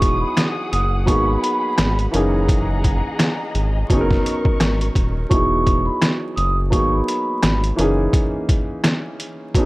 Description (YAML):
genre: hip hop, boom-bap hip-hop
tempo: 85 BPM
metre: 4/4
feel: swing 58% on 16ths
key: unclear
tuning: A4 = 439 Hz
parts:
  - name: vibraphone with soft mallets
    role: melody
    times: 0.0-7.6 s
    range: B5 to D#6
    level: -23 LUFS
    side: right 1 dB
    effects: high-pass filter, low-pass filter, analog delay
  - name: warm upright piano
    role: accompaniment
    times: 0.0-9.7 s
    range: E3 to A#4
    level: -22 LUFS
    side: equal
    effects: cassette tape, high-pass filter, low-pass filter
  - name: dark studio string section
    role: sustained chords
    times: 0.0-5.3 s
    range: G#4 to D#6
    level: -29 LUFS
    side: left 2 dB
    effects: high-pass filter, low-pass filter
  - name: round analog bass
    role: bass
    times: 0.0-8.1 s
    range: D#1 to G#1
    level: -20 LUFS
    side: equal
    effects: tube saturation
  - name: trip hop sampler-style drum kit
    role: drums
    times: 0.0-9.7 s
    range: hi-hat, kick drum, rim click, snare drum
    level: -19 LUFS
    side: equal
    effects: overdrive
room: little or no reverb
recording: dry, gritty hardware recording, vinyl crackle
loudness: -16 LUFS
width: side -20 dB against mid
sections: 0.0-5.3 A section; 5.3-9.7 A section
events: break 8.1-9.7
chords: 0.0 Emaj9; 1.1 G#m9; 2.1 F#13; 3.9 Bmaj9/F#; 5.3 Emaj9; 6.7 G#m9; 7.8 F#13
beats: 0.37 1.07 1.78 | 2.49 3.19 3.90 4.60 | 5.31 6.02 6.72 7.43 | 8.13 8.84 9.54